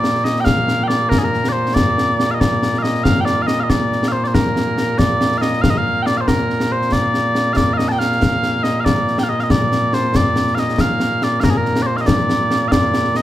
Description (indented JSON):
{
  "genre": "scottish traditional, Scottish pipe music",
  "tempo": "93 BPM (dotted quarters)",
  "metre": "6/8",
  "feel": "straight",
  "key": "Bb major",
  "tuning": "A4 = 440 Hz",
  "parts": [
    { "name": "mellow small bagpipes", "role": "melody", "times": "0.0-13.2 s", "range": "Bb2 to A5", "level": "-17 LUFS", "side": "equal", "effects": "none" },
    { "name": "concert snare drum and concert bass drum", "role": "drums", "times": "0.0-13.2 s", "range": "none", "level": "-18 LUFS", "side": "left 1 dB", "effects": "none" }
  ],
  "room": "moderate recital hall reverb, RT60 1.5 s",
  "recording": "none",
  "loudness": "-14 LUFS",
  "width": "side -13 dB against mid",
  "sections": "0.0-5.6 A section; 5.6-13.2 A section",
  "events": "none",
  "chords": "none"
}